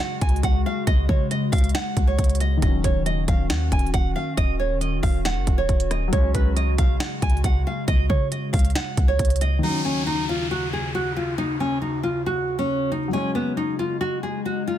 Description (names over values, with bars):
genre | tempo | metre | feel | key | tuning
hip hop, trap | 137 BPM | 4/4 | half-time | Eb minor | A4 = 436 Hz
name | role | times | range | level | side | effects
nylon-string guitar | melody | 0.0-14.8 s | Cb4 to Ab5 | -26 LUFS | right 1 dB | none
dark baby grand piano | accompaniment | 0.0-14.8 s | Eb3 to Db4 | -31 LUFS | left 4 dB | none
warbly tape-like pad | sustained chords | 0.0-14.8 s | Eb2 to Gb4 | -30 LUFS | left 1 dB | chorus, built-in reverb
trap drum kit | drums | 0.0-9.5 s | hi-hat, kick drum, rim click, snare drum | -22 LUFS | equal | none
clean 808-style bass | bass | 0.2-9.6 s | Eb1 to Db3 | -23 LUFS | equal | none
downlifter and swell | sound effects | 9.6-14.8 s | none | -34 LUFS | left 1 dB | none
room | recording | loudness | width
digital ambience | dense, heavily limited modern master | -20 LUFS | side -11 dB against mid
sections
0.0-9.6 A section; 9.6-14.8 B section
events
none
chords
0.0 Dbsus4; 2.6 Ebm7; 6.1 Dbsus4; 9.6 Ebm7; 13.1 Dbsus4